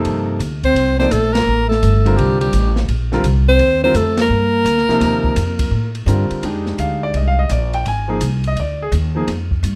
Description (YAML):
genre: modal jazz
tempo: 169 BPM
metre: 4/4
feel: swing 66% on 8ths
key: C dorian, F dorian from 6.4 s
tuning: A4 = 440 Hz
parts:
  - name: clear concert grand piano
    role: accompaniment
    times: 0.0-9.3 s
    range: C3 to Ab5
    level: -23 LUFS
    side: equal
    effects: none
  - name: upright bass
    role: bass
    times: 0.0-9.8 s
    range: G1 to A2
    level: -20 LUFS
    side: equal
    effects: none
  - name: open jazz drum kit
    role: drums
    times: 0.0-9.7 s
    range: hi-hat, kick drum, ride cymbal, snare drum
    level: -29 LUFS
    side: equal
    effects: none
  - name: clear alto saxophone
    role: melody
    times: 0.6-6.1 s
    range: G4 to C5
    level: -20 LUFS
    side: equal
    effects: plate reverb
  - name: mellow bass clarinet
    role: second line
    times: 0.6-6.0 s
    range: G3 to C4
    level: -23 LUFS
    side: equal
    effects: none
room: light reverb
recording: close, detailed microphones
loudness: -16 LUFS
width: mono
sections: 0.0-6.4 A section; 6.4-9.8 B section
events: band accent 1.3, 4.1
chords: 0.0 Cm11; 6.4 Fm11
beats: 0.05 0.40 | 0.76 1.11 1.47 1.82 | 2.17 2.53 2.88 3.24 | 3.59 3.95 4.30 4.66 | 5.01 5.37 5.72 6.08 | 6.43 6.79 7.14 7.50 | 7.85 8.21 8.56 8.92 | 9.28 9.63